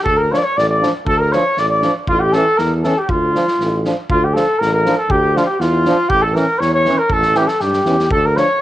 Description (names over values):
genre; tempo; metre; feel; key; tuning
balkan folk, Balkan brass band; 119 BPM; 2/4; straight; D harmonic minor; A4 = 436 Hz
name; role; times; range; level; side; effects
mellow cornet; melody; 0.0-8.6 s; F4 to D5; -16 LUFS; equal; cassette tape
warm alto saxophone; second line; 0.0-8.6 s; F4 to D5; -22 LUFS; left 2 dB; cassette tape
mellow tuba; bass; 0.0-8.4 s; A1 to G2; -19 LUFS; equal; none
loose indie drum kit; percussion; 0.1-8.4 s; kick drum, snare drum; -26 LUFS; equal; cassette tape
bright trombone; accompaniment; 0.3-8.5 s; E3 to F3; -22 LUFS; right 3 dB; cassette tape
warm euphonium; accompaniment; 0.3-8.5 s; C#4 to D4; -24 LUFS; left 3 dB; cassette tape
room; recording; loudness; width
light reverb, small room ambience; home recording on cassette; -13 LUFS; side -14 dB against mid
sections
0.0-4.1 A section; 4.1-8.6 A section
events
none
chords
0.0 Dm; 2.1 A; 3.1 Dm; 6.1 A; 8.1 Dm